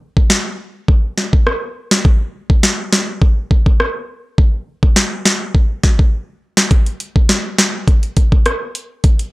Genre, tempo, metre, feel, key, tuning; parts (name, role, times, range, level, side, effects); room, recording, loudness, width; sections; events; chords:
dancehall; 103 BPM; 4/4; straight
afro-pop drum kit; drums; 0.2-9.3 s; hi-hat, kick drum, rim click, snare drum; -12 LUFS; equal
little or no reverb; dry, gritty hardware recording; -13 LUFS; side -21 dB against mid
0.0-9.3 A section
break 0.0-6.7